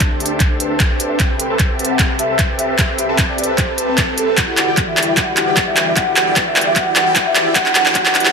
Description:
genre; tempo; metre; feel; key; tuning
future bass; 151 BPM; 4/4; swing 53% on 16ths, half-time; A dorian; A4 = 443 Hz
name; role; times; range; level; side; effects
warm velvety synth lead; melody; 0.0-8.3 s; A4 to G5; -20 LUFS; equal; chorus, sidechain pumping, digital delay
rich chamber string section; sustained chords; 0.0-8.3 s; C2 to G4; -31 LUFS; left 2 dB; sidechain pumping, low-pass filter
Celtic harp; arpeggios; 0.0-8.3 s; F#4 to A5; -28 LUFS; left 1 dB; vintage 12-bit sampler grit, sidechain pumping, low-pass filter, ping-pong delay
supersaw chords; riff; 0.0-8.3 s; E3 to A5; -20 LUFS; equal; phaser, sidechain pumping, low-pass filter
electronic kick drum; drums; 0.0-8.0 s; none; -18 LUFS; equal; overdrive
trap drum kit; drums; 0.0-8.3 s; handclaps, hi-hat; -16 LUFS; equal; overdrive
riser; sound effects; 6.1-8.3 s; none; -37 LUFS; right 1 dB; none
room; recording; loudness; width
wet digital room reverb, RT60 1.1 s; dense, heavily limited modern master, high-pass filter; -13 LUFS; side -5 dB against mid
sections
0.0-8.3 A section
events
build-up 0.0-8.3; drum fill 0.0-8.3; filter sweep on supersaw synth 0.0-8.3; filter sweep on soft synth lead 0.0-8.3; filter sweep 0.0-8.3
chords
0.0 D7sus4; 1.2 Am7/C; 4.4 Em9

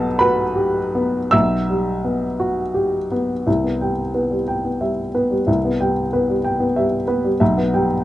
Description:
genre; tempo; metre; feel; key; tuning
neoclassical minimalist piano; 51-63 BPM (dotted quarters); 6/8; rubato; unclear; A4 = 440 Hz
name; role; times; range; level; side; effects
dark baby grand piano; solo; 0.0-8.0 s; B1 to E6; -17 LUFS; equal; none
room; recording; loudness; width
light reverb; dark, warm production, nothing above 11.0 kHz; -17 LUFS; side -14 dB against mid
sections
0.0-3.5 A section; 3.5-8.0 B section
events
none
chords
0.0 Emadd9/B; 3.5 Cmaj7; 7.4 Em/B

